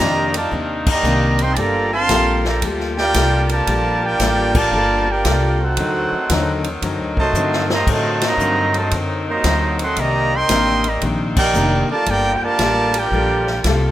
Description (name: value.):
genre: jazz, big band swing.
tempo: 114 BPM.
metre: 4/4.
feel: swing 66% on 8ths.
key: G minor.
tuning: A4 = 440 Hz.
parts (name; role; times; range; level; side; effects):
clear trumpet section; melody; 0.0-13.7 s; Eb4 to C6; -19 LUFS; right 1 dB; none.
dark trombone section; second line; 0.0-13.7 s; C3 to G4; -28 LUFS; right 4 dB; none.
picked steel-string acoustic guitar; accompaniment; 0.0-13.9 s; C3 to A4; -24 LUFS; left 3 dB; none.
bright saxophone section; sustained chords; 0.0-13.9 s; Eb3 to G4; -27 LUFS; left 1 dB; none.
upright bass; bass; 0.0-13.9 s; F1 to A2; -22 LUFS; equal; none.
swinging big-band drum kit; drums; 0.0-13.8 s; crash cymbal, hi-hat, kick drum, ride cymbal, snare drum; -23 LUFS; left 1 dB; none.
room: light reverb, studio reverb.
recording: rough home demo mix.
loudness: -15 LUFS.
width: side -13 dB against mid.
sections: 0.0-13.9 A section.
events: band accent 0.8, 4.5, 8.1, 11.3; drum fill 7.3-7.9.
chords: 0.0 Cm9; 1.6 Gm9; 5.8 D7b9; 10.0 Cm9; 12.1 Gm9.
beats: 0.52 1.04 | 1.57 2.09 2.62 3.15 | 3.67 4.20 4.72 5.25 | 5.77 6.29 6.82 7.34 | 7.87 8.39 8.92 9.44 | 9.97 10.49 11.02 11.54 | 12.07 12.60 13.12 13.65.